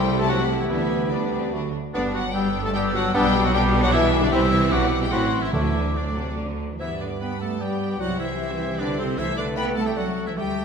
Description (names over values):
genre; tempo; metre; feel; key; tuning
quick classical-period movement for symphony orchestra; 139-155 BPM; 3/4; rubato; G major; A4 = 439 Hz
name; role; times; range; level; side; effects
rich studio violin section; melody; 0.0-10.6 s; C5 to B5; -31 LUFS; left 5 dB; none
clear studio violin section; second line; 0.0-10.6 s; B3 to B5; -32 LUFS; left 2 dB; none
hollow concert flute; second line; 0.0-10.6 s; A4 to E6; -32 LUFS; left 2 dB; none
warm clarinet; second line; 0.0-10.6 s; D4 to A4; -31 LUFS; left 2 dB; none
warm cor anglais; second line; 0.0-10.6 s; C4 to B4; -32 LUFS; right 1 dB; none
rich studio viola section; accompaniment; 0.0-10.6 s; E3 to D5; -30 LUFS; right 2 dB; none
warm bassoon; accompaniment; 0.0-10.6 s; A3 to C4; -32 LUFS; right 1 dB; none
mellow French horn section; sustained chords; 0.0-10.6 s; C3 to B3; -27 LUFS; left 4 dB; none
rich studio double bass section; bass; 0.0-10.6 s; G1 to G2; -28 LUFS; right 3 dB; none
warm studio cello section; bass; 0.0-10.6 s; G2 to B3; -30 LUFS; right 2 dB; none
timpani; percussion; 5.5-6.1 s; D3; -30 LUFS; right 2 dB; none
room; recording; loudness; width
wet scoring stage reverb, RT60 1.7 s; minimal, uncompressed stereo recording; -20 LUFS; side -6 dB against mid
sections
0.0-6.8 A section; 6.8-10.6 B section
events
none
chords
0.0 Am7/C; 0.7 G/D; 1.5 D; 1.9 G; 3.1 G/B; 4.3 C; 5.1 Am; 5.5 D; 6.8 G; 8.0 C; 9.2 Am/C